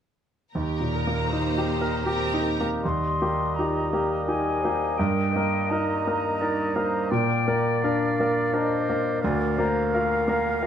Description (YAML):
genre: classical, romantic movement for piano and orchestra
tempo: 72-90 BPM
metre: 3/4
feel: rubato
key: Eb major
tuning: A4 = 440 Hz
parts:
  - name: warm studio violin section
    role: second line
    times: 0.5-2.6 s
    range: Bb4 to Bb5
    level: -32 LUFS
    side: left 3 dB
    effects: none
  - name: rich studio cello section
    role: bass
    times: 0.5-2.6 s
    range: Eb2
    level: -33 LUFS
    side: right 2 dB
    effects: none
  - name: clear grand piano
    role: melody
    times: 0.6-10.7 s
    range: D2 to Bb4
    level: -24 LUFS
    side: equal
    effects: none
  - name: rich studio viola section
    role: accompaniment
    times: 0.6-2.6 s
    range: C4 to Bb4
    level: -32 LUFS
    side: right 5 dB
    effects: none
  - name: clear oboe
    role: second line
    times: 2.8-10.7 s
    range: D5 to F5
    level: -33 LUFS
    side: right 3 dB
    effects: none
  - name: mellow concert flute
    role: second line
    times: 2.8-10.7 s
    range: D5 to C6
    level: -29 LUFS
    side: left 2 dB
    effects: none
  - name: dark bassoon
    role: accompaniment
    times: 2.8-10.7 s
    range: G3 to Bb3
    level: -33 LUFS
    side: equal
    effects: none
  - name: warm clarinet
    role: second line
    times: 3.6-10.7 s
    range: F4 to Eb5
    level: -33 LUFS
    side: left 1 dB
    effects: none
room: light reverb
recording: close, detailed microphones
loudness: -22 LUFS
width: side -9 dB against mid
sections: 0.5-2.8 A section; 2.8-10.7 B section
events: none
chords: 0.5 Eb; 5.0 Eb/G